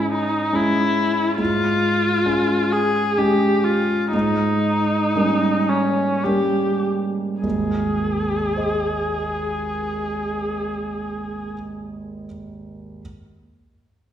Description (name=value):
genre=classical, romantic duo for viola and grand piano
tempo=48-71 BPM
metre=3/4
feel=rubato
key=Ab major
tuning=A4 = 442 Hz
part: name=warm viola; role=melody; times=0.0-11.5 s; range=Db4 to Ab4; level=-21 LUFS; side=left 2 dB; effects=none
part: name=warm concert grand piano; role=accompaniment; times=0.0-13.0 s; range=Ab1 to Eb5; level=-22 LUFS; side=right 2 dB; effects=none
room=wet recital hall reverb, RT60 1.7 s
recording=recorded in a church or concert hall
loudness=-18 LUFS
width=side -10 dB against mid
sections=0.0-7.4 A section; 7.4-10.8 B section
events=slowing down 0.1-7.4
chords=0.0 Dbm/Ab; 4.1 Eb7/Ab; 7.4 Ab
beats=0.54 | 1.39 2.26 3.17 | 4.13 5.15 6.25 | 7.43 8.54 9.65